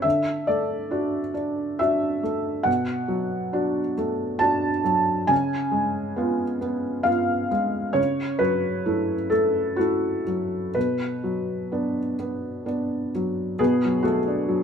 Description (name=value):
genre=neoclassical minimalist piano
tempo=60-69 BPM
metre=3/4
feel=rubato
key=B dorian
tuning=A4 = 440 Hz
part: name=felt-muted upright piano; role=solo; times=0.0-14.6 s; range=B2 to A5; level=-22 LUFS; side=equal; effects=none
room=moderate stone room reverb, RT60 1.1 s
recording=band playing live in one room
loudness=-22 LUFS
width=side -7 dB against mid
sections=0.0-13.6 A section; 13.6-14.6 A section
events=none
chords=0.0 D; 2.7 Bm7; 5.3 C#7; 8.0 F#m7/C#; 10.8 Bm; 13.6 Bm7